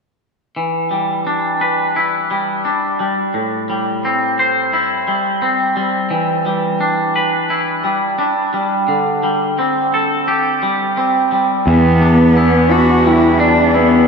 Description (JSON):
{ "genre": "rock", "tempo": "86 BPM", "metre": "4/4", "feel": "straight", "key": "E minor", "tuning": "A4 = 440 Hz", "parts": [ { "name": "twangy electric guitar", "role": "arpeggios", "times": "0.6-14.1 s", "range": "A2 to C5", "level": "-15 LUFS", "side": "equal", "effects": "diffuse ambient delay" }, { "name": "rich cello", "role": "melody", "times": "11.7-14.1 s", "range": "B3 to F#4", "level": "-12 LUFS", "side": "equal", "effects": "diffuse ambient delay" }, { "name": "fuzz picked electric bass", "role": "bass", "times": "11.7-14.1 s", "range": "E2", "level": "-13 LUFS", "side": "equal", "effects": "overdrive" } ], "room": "wet lush hall reverb, RT60 2.9 s", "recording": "dreamy mix soaked in reverb", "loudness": "-13 LUFS", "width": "side -5 dB against mid", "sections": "0.6-11.7 A section; 11.7-14.1 B section", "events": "none", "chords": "0.6 Em7; 3.3 Am7; 6.1 Em7; 8.9 D7sus4; 11.7 Em7" }